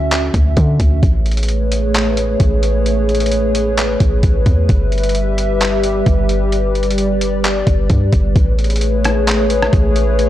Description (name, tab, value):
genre	hip hop, atmospheric cloud-rap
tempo	131 BPM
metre	4/4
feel	half-time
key	A major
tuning	A4 = 440 Hz
part	dark analog pad	sustained chords	0.0-10.3 s	D3 to E5	-17 LUFS	left 1 dB	chorus, sidechain pumping
part	warm 808-style bass	bass	0.0-10.3 s	G1 to D3	-16 LUFS	equal	none
part	trip hop sampler-style drum kit	drums	0.1-10.3 s	handclaps, hi-hat, kick drum, rim click	-16 LUFS	equal	none
room	little or no reverb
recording	dry, gritty hardware recording, transformer saturation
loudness	-12 LUFS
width	side -13 dB against mid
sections	0.0-8.4 A section; 8.4-10.3 B section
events	none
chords	0.0 Dmaj9; 1.0 Amaj9; 4.7 G6; 8.4 Amaj9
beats	0.11 0.57 | 1.03 1.49 1.94 2.40 | 2.86 3.32 3.78 4.24 | 4.69 5.15 5.61 6.07 | 6.53 6.98 7.44 7.90 | 8.36 8.81 9.27 9.73 | 10.19